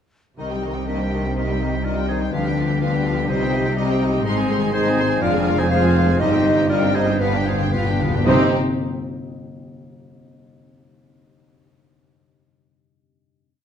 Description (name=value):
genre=classical, dramatic, fast romantic movement for symphony orchestra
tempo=111-126 BPM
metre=4/4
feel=straight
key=C minor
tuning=A4 = 440 Hz
part: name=rich symphonic violin section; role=melody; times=0.4-8.6 s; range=G4 to C6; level=-28 LUFS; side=left 3 dB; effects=none
part: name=clear symphonic violin section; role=second line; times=0.4-8.5 s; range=C4 to Ab4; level=-32 LUFS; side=left 2 dB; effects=none
part: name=mellow clarinet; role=second line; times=0.4-8.5 s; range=G4 to Eb5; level=-28 LUFS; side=left 2 dB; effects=none
part: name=mellow hollow silver concert flute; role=second line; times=0.4-8.6 s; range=C4 to C5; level=-28 LUFS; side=left 2 dB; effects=none
part: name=warm oboe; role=second line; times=0.4-8.5 s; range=Eb4 to Eb5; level=-30 LUFS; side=right 3 dB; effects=none
part: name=rich symphonic viola section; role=accompaniment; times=0.4-8.6 s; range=Eb3 to D4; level=-27 LUFS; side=right 2 dB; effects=none
part: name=dark French horn section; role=sustained chords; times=0.4-8.5 s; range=G3 to Eb4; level=-26 LUFS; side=left 1 dB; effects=none
part: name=concert harp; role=arpeggios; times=0.4-10.4 s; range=F2 to Eb5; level=-27 LUFS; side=left 9 dB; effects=none
part: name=rich symphonic cello section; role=bass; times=0.4-8.5 s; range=F2 to D3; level=-25 LUFS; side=right 2 dB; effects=none
part: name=rich symphonic double bass section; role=bass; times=0.4-8.6 s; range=F1 to D2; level=-26 LUFS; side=right 4 dB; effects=none
part: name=timpani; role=percussion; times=7.2-8.5 s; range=G2 to C3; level=-25 LUFS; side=equal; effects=none
room=wet recital hall reverb, RT60 1.3 s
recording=dark, warm production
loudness=-17 LUFS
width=side -8 dB against mid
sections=0.4-8.3 A section; 8.3-10.3 final chord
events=slowing down 3.3-8.3; timpani fill 7.2-8.3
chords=0.4 Cm; 2.3 G7/D; 3.3 Cm; 4.2 Ab; 5.2 Fm; 6.2 Cm/G; 7.2 G7; 8.3 Cm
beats=| 0.38 0.87 1.36 1.85 | 2.33 2.81 3.29 3.76 | 4.25 4.73 5.22 5.71 | 6.20 6.70 7.21 7.73 | 8.26 8.78 9.30 9.82